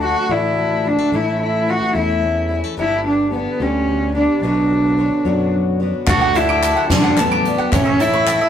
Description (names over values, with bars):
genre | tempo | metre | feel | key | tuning
indie folk with a building arrangement | 73 BPM (dotted quarters) | 6/8 | straight | D major | A4 = 440 Hz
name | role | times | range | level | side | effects
warm cello | melody | 0.0-8.5 s | B3 to F#4 | -18 LUFS | right 1 dB | none
fingerpicked steel-string acoustic guitar | accompaniment | 0.0-7.7 s | D2 to G4 | -27 LUFS | left 1 dB | none
picked twelve-string acoustic guitar | accompaniment | 0.0-8.5 s | G2 to C#5 | -24 LUFS | left 7 dB | none
fingered electric bass | bass | 0.0-8.4 s | G1 to F#2 | -23 LUFS | equal | none
clear grand piano | accompaniment | 6.1-8.5 s | A1 to D5 | -30 LUFS | equal | none
mandolin | arpeggios | 6.1-8.5 s | C#5 to D6 | -20 LUFS | right 4 dB | none
soft-mallet drum kit | drums | 6.1-8.4 s | crash cymbal, hi-hat, kick drum, snare drum | -20 LUFS | equal | none
group handclap | percussion | 6.1-8.4 s | none | -26 LUFS | left 5 dB | none
room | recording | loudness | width
moderate studio reverb, RT60 0.6 s | rough rehearsal-room recording, tube saturation | -15 LUFS | side -9 dB against mid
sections
0.0-6.1 A section; 6.1-8.5 B section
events
none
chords
0.0 D; 1.1 A; 2.8 G; 4.4 Bmadd9; 6.1 D; 7.7 A